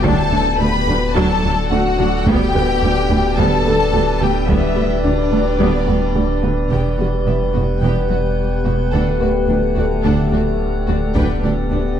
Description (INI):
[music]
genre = cinematic, hybrid orchestral and electronic film score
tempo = 108 BPM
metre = 4/4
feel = straight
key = unclear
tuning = A4 = 440 Hz
[part]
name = rich symphonic violin section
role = melody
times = 0.0-11.8 s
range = A4 to B5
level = -25 LUFS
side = left 3 dB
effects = none
[part]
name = warm symphonic violin section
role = second line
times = 0.0-11.8 s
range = D4 to B4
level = -25 LUFS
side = left 4 dB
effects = none
[part]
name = rich symphonic viola section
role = accompaniment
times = 0.0-11.8 s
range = D3 to D4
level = -25 LUFS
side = right 1 dB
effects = none
[part]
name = metallic inharmonic drone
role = sustained chords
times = 0.0-12.0 s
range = B3 to F#5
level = -22 LUFS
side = equal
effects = chorus, built-in reverb
[part]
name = resonant blip pluck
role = arpeggios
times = 0.0-11.9 s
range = D3 to G4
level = -27 LUFS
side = equal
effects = none
[part]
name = rich symphonic double bass section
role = bass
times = 0.0-11.8 s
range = E1 to D2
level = -23 LUFS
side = right 3 dB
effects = none
[part]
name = sub bass with octave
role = bass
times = 0.0-12.0 s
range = D1 to E1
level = -22 LUFS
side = equal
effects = none
[part]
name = warm concert grand piano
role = texture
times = 0.0-12.0 s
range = A3 to D5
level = -27 LUFS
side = left 2 dB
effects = ping-pong delay
[part]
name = clear symphonic cello section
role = bass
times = 0.1-11.8 s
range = D2 to E2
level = -23 LUFS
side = right 2 dB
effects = none
[part]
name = taiko ensemble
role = drums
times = 0.1-7.8, 11.2-11.7 s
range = none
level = -24 LUFS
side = equal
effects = none
[part]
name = mellow French horn section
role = sustained chords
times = 6.7-12.0 s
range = G3 to G4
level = -24 LUFS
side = left 4 dB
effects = none
[sound]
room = wet recital hall reverb, RT60 1.4 s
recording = dark, warm production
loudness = -14 LUFS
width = side -9 dB against mid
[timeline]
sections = 0.0-6.7 A section; 6.7-12.0 B section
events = none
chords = 0.1 D; 2.3 G/D; 6.7 Emadd9; 8.9 D